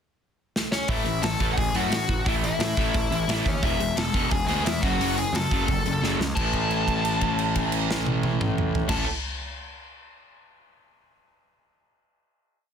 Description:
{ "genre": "punk rock", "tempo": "176 BPM", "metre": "4/4", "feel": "straight", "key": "A major", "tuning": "A4 = 440 Hz", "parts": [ { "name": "big rock drum kit", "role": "drums", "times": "0.6-9.0 s", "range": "crash cymbal, hi-hat, kick drum, snare drum, toms", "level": "-27 LUFS", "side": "right 1 dB", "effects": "none" }, { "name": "smooth overdriven lead guitar", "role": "melody", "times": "0.7-9.0 s", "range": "C#4 to A5", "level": "-28 LUFS", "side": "left 2 dB", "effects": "none" }, { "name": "raw garage guitar", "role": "riff", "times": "0.9-9.1 s", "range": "E2 to A3", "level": "-30 LUFS", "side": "right 13 dB", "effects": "overdrive" }, { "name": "sludgy distorted guitar", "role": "riff", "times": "0.9-9.1 s", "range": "F#2 to A4", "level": "-30 LUFS", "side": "left 14 dB", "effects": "overdrive" }, { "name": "fuzz picked electric bass", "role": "bass", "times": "0.9-9.0 s", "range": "E1 to A2", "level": "-29 LUFS", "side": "right 1 dB", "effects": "overdrive" } ], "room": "little or no reverb", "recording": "dense, heavily limited modern master", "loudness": "-22 LUFS", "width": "side -8 dB against mid", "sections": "0.0-0.9 pickup bar; 0.9-6.4 verse; 6.4-9.1 final chord", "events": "drum fill 0.6-0.9, 6.0-6.4; held note 6.4-8.9", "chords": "0.0 N.C.; 0.9 A5; 3.6 E; 4.8 F#m; 6.4 A", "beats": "0.21 0.55 | 0.89 1.23 1.58 1.92 | 2.26 2.60 2.95 3.29 | 3.63 3.97 4.32 4.66 | 5.00 5.34 5.68 6.03 | 6.37 6.71 7.05 7.39 | 7.73 8.07 8.41 8.75" }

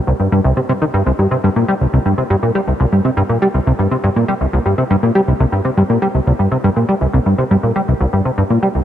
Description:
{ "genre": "ambient", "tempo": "121 BPM", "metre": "4/4", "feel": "straight", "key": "unclear", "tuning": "A4 = 440 Hz", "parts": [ { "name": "plucky analog bass", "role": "solo", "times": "0.1-8.8 s", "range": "C2 to G3", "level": "-13 LUFS", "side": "equal", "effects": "analog chorus, cassette tape, tape echo" } ], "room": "moderate huge ambient reverb, RT60 8.4 s", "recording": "cassette tape", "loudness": "-13 LUFS", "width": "side -10 dB against mid", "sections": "0.0-8.8 A section", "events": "none", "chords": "none", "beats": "0.07 0.57 | 1.06 1.56 2.05 2.55 | 3.05 3.54 4.04 4.53 | 5.03 5.53 6.02 6.52 | 7.01 7.51 8.01 8.50" }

